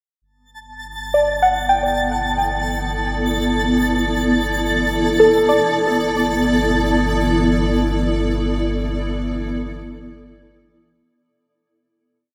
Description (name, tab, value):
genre	ambient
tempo	free time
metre	none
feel	none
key	G major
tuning	A4 = 441 Hz
part	granular cloud pad	sustained chords	1.7-11.1 s	B3 to D5	-22 LUFS	equal	built-in reverb
part	warm sub bass	bass	0.2-11.0 s	G1	-28 LUFS	equal	none
part	twinkling granular texture	texture	0.6-11.1 s	A5 to A6	-26 LUFS	equal	built-in reverb, shimmer reverb
part	soft round pluck	arpeggios	1.1-6.3 s	A4 to G5	-20 LUFS	equal	chorus, tape echo, shimmer reverb
room	wet lush hall reverb, RT60 2.8 s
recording	none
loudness	-18 LUFS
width	mono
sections	0.2-11.1 A section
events	fade-in on ambient pad 0.2-11.1; fade-in on sub bass 0.2-11.1; fade-out on synth texture 0.2-11.1; fade-out 7.4-11.1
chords	0.2 G69; 5.7 Bm/G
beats	free time